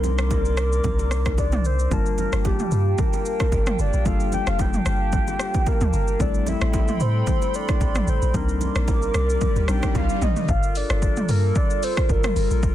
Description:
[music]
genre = amapiano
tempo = 112 BPM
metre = 4/4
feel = swing 55% on 16ths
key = G minor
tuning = A4 = 436 Hz
[part]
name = soft octave-layered synth lead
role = melody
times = 0.0-12.7 s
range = G4 to G5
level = -27 LUFS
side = equal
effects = chorus, phaser, ping-pong delay
[part]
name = tine electric piano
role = accompaniment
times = 0.0-10.5 s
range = G3 to A5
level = -30 LUFS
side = left 7 dB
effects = none
[part]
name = hollow soft pad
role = sustained chords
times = 0.0-12.7 s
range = G3 to D6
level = -32 LUFS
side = left 1 dB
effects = chorus
[part]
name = punchy sub bass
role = bass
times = 0.0-1.9 s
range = C2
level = -22 LUFS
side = equal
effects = none
[part]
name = deep house drum kit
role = drums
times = 0.0-12.7 s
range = hi-hat, kick drum, rim click, shaker, toms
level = -24 LUFS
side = equal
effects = overdrive, vintage 12-bit sampler grit
[part]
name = bongos and congas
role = percussion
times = 0.0-10.1 s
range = none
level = -34 LUFS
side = right 8 dB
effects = none
[part]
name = deep log drum bass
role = bass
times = 1.9-12.7 s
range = F1 to A2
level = -23 LUFS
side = equal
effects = none
[part]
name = swell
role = sound effects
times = 8.7-10.5 s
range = none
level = -34 LUFS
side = equal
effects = none
[sound]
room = digital ambience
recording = dense, heavily limited modern master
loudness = -19 LUFS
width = side -13 dB against mid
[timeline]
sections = 0.0-10.5 A section; 10.5-12.7 B section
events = swell 8.7-10.5; drum fill 9.9-10.5; drop 10.5-12.7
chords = 0.0 Cm9; 1.9 Gm9; 6.2 Am9; 8.3 Cm9; 10.5 Gm9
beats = 0.31 0.84 1.38 | 1.91 2.45 2.99 3.52 | 4.06 4.59 5.13 5.66 | 6.20 6.74 7.27 7.81 | 8.34 8.88 9.41 9.95 | 10.49 11.02 11.56 12.09 | 12.63

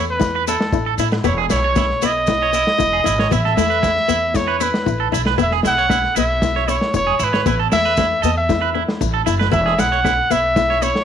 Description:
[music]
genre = highlife guitar band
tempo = 116 BPM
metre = 4/4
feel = straight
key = E major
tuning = A4 = 442 Hz
[part]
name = clear trumpet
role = melody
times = 0.0-11.0 s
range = A4 to F#5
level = -18 LUFS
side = equal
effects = none
[part]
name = flamenco guitar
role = accompaniment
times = 0.0-11.0 s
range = G#3 to E4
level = -24 LUFS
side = left 14 dB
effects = none
[part]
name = electric guitar at the edge of break-up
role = arpeggios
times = 0.0-10.9 s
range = E4 to C#5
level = -23 LUFS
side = right 14 dB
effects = slapback echo
[part]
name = upright bass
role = bass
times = 0.0-10.9 s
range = E1 to A2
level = -23 LUFS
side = equal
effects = none
[part]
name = vintage drum kit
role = drums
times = 0.2-11.0 s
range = kick drum, snare drum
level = -22 LUFS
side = equal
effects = none
[part]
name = maracas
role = percussion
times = 0.2-10.9 s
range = none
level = -32 LUFS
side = left 14 dB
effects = none
[sound]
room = light reverb, studio reverb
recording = 1960s-style stereo with parts hard left and right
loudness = -15 LUFS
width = side -8 dB against mid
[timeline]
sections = 0.0-11.0 A section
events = none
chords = 0.0 Asus2; 1.2 E6; 3.3 Asus2; 5.4 E6; 7.5 Asus2; 9.5 E6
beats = 0.21 0.73 | 1.25 1.77 2.29 2.80 | 3.32 3.84 4.36 4.87 | 5.39 5.91 6.42 6.94 | 7.46 7.98 8.49 9.01 | 9.53 10.05 10.56

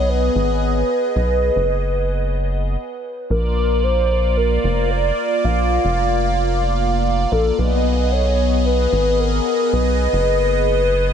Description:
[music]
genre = IDM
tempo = 112 BPM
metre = 4/4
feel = straight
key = unclear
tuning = A4 = 441 Hz
[part]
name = warbly nostalgic lead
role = melody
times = 0.0-11.1 s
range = A4 to F5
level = -20 LUFS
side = equal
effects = lush chorus, cassette tape, dub echo
[part]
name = phased analog pad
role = sustained chords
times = 0.0-11.1 s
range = Bb3 to D#5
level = -22 LUFS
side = equal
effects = phaser, chorus
[part]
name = rubbery square bass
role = bass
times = 0.0-11.1 s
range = F1 to B1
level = -20 LUFS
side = equal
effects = none
[sound]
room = light reverb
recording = echo-heavy mix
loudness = -16 LUFS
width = side -8 dB against mid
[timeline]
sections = 0.0-3.3 A section; 3.3-11.1 B section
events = stop 2.8-3.3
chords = 0.0 B6; 3.3 Bb; 7.6 B6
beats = 0.09 0.62 | 1.16 1.69 2.23 2.77 | 3.30 3.84 4.37 4.91 | 5.44 5.98 6.51 7.05 | 7.59 8.12 8.66 9.19 | 9.73 10.27 10.80

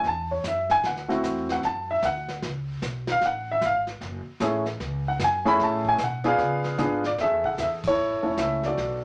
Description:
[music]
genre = jazz piano trio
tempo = 151 BPM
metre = 4/4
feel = swing 64% on 8ths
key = F# minor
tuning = A4 = 443 Hz
[part]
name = warm upright piano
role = melody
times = 0.0-9.0 s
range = A3 to B5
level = -25 LUFS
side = equal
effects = none
[part]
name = upright bass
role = bass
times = 0.0-9.0 s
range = E1 to C#3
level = -36 LUFS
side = equal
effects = none
[part]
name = vintage brush drum kit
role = drums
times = 0.0-9.0 s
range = brushed snare drum, crash cymbal, hi-hat, kick drum, snare drum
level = -38 LUFS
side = equal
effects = none
[sound]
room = wet studio ambience, RT60 0.5 s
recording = tube saturation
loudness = -25 LUFS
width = mono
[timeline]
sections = 0.0-7.2 A section; 7.2-9.0 B section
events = upright piano solo 0.0-7.2; band accent 7.8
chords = 0.0 F#m7; 0.8 D7; 2.4 C#5; 4.0 F#m9; 6.4 C#7b9; 7.2 F#m9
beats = 0.03 0.43 | 0.83 1.23 1.62 2.02 | 2.42 2.82 3.21 3.61 | 4.01 4.41 4.80 5.20 | 5.60 5.99 6.39 6.79 | 7.18 7.58 7.98 8.38 | 8.78

